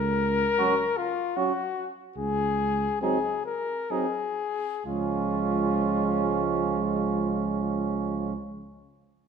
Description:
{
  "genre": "classical, brass quintet",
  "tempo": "62-79 BPM",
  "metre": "3/4",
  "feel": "rubato",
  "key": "Db major",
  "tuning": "A4 = 442 Hz",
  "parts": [
    { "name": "mellow trumpet", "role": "melody", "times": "0.0-8.3 s", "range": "F4 to Bb4", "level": "-28 LUFS", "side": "left 6 dB", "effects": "none" },
    { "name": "dark tuba", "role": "bass", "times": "0.0-8.3 s", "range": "Db2", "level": "-30 LUFS", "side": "right 4 dB", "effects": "none" },
    { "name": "warm flugelhorn", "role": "second line", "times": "0.6-8.3 s", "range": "Db4 to Gb4", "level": "-31 LUFS", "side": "right 10 dB", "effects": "none" },
    { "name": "clear French horn", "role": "accompaniment", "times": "0.6-8.3 s", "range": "Ab3 to Db4", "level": "-33 LUFS", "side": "equal", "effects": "none" },
    { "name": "mellow trombone", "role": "accompaniment", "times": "0.6-8.3 s", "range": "F3 to Gb3", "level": "-34 LUFS", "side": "right 8 dB", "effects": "none" }
  ],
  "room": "wet recital hall reverb, RT60 1.5 s",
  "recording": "minimal, uncompressed stereo recording",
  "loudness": "-24 LUFS",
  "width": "side -6 dB against mid",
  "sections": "0.0-4.9 A section; 4.9-7.6 B section",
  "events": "slowing down 0.0-4.9",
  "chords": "0.0 Gb5/Db; 2.2 Ab7/Db; 4.9 Db"
}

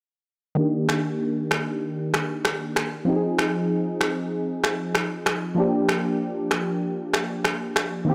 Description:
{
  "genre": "afrobeats",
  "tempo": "96 BPM",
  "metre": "4/4",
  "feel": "swing 55% on 16ths",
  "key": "Eb major",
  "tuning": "A4 = 439 Hz",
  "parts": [
    { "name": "warm analog keys", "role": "accompaniment", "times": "0.6-8.1 s", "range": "Eb3 to Ab4", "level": "-26 LUFS", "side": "equal", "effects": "chorus, low-pass filter" },
    { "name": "electronic rim click and finger snaps", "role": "drums", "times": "0.9-7.9 s", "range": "none", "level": "-27 LUFS", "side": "equal", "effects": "none" }
  ],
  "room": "moderate lush hall reverb, RT60 1.7 s",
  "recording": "none",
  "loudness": "-25 LUFS",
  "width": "mono",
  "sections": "0.6-8.1 A section",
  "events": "filter sweep on synth keys 0.6-8.1",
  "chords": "0.6 Ebmaj7; 3.1 Ab6; 5.6 Gm7"
}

